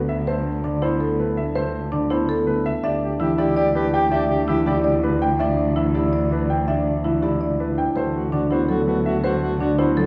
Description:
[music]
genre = classical, minimalist pattern music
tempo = 328 BPM (eighths)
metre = 7/8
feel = straight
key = D mixolydian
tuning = A4 = 442 Hz
[part]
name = warm baby grand piano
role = melody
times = 0.0-10.0 s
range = B4 to G5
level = -29 LUFS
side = equal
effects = none
[part]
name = mellow soprano saxophone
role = second line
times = 0.0, 2.8-5.2, 8.0-10.1 s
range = F#4 to G4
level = -29 LUFS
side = equal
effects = none
[part]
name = concert harp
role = accompaniment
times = 0.0-10.1 s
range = D3 to E4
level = -28 LUFS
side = equal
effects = none
[part]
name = dark cello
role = bass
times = 0.0-10.1 s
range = D2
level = -27 LUFS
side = equal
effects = none
[part]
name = marimba with medium mallets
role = arpeggios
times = 0.3-10.1 s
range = D4 to E5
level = -26 LUFS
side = equal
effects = none
[sound]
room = wet large studio reverb, RT60 0.9 s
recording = heard from further back in the room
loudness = -21 LUFS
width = mono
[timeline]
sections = 0.0-10.1 A section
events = none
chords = 0.0 D7sus2; 2.8 Em/D; 8.0 D9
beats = 0.09 | 0.28 0.46 0.64 0.82 1.01 1.19 1.37 | 1.55 1.74 1.92 2.10 2.29 2.47 2.65 | 2.84 3.02 3.20 3.38 3.57 3.75 3.93 | 4.12 4.30 4.48 4.67 4.85 5.03 5.21 | 5.40 5.58 5.76 5.95 6.13 6.31 6.49 | 6.68 6.86 7.04 7.23 7.41 7.59 7.78 | 7.96 8.14 8.32 8.51 8.69 8.87 9.05 | 9.24 9.42 9.60 9.79 9.97

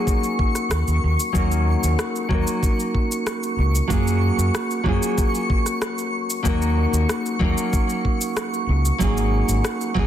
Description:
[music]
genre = sunset chillout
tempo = 94 BPM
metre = 4/4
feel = straight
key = Eb minor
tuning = A4 = 437 Hz
[part]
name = nylon-string guitar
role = accompaniment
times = 0.0-10.1 s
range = Gb3 to Bb4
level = -23 LUFS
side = moving between left 4 dB and right 4 dB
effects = auto-pan, low-pass filter, digital delay
[part]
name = twinkling granular texture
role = texture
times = 0.0-10.1 s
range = Db6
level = -29 LUFS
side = equal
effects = built-in reverb
[part]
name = electronic cabasa and rim click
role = drums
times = 0.1-9.9 s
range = none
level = -29 LUFS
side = equal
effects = soft clipping on snare
[part]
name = electronic kick drum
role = drums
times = 0.1-10.1 s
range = none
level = -22 LUFS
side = equal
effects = none
[part]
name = overdriven fingered electric bass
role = bass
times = 0.7-10.1 s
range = Ab1 to Gb2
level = -20 LUFS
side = equal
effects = none
[sound]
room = moderate plate reverb, RT60 1.5 s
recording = dense, heavily limited modern master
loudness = -19 LUFS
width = side -10 dB against mid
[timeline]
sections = 0.0-10.1 A section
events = none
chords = 0.0 Ab9sus4; 1.3 Ebm7; 3.9 Gbmaj9; 6.5 Ebm7; 9.0 Ab9sus4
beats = 0.07 0.71 | 1.35 1.98 2.62 3.26 | 3.90 4.54 5.18 5.81 | 6.45 7.09 7.73 8.37 | 9.01 9.64

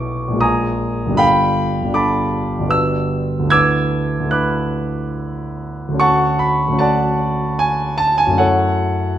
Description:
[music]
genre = classical, impressionist solo piano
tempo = 75 BPM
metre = 3/4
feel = uneven beats, rubato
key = unclear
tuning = A4 = 440 Hz
[part]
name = warm concert grand piano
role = solo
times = 0.0-9.2 s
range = G1 to G#6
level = -15 LUFS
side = equal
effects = none
[sound]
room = wet recital hall reverb, RT60 1.3 s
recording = none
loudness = -15 LUFS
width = side -11 dB against mid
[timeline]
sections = 0.0-9.2 A section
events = none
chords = 0.4 A#7sus4; 1.2 G9; 2.8 Gmaj7; 3.5 D69; 8.4 F#m7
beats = 0.43 | 1.20 1.97 2.75 | 3.55 4.36 5.20 | 6.03 6.81 7.60 | 8.42

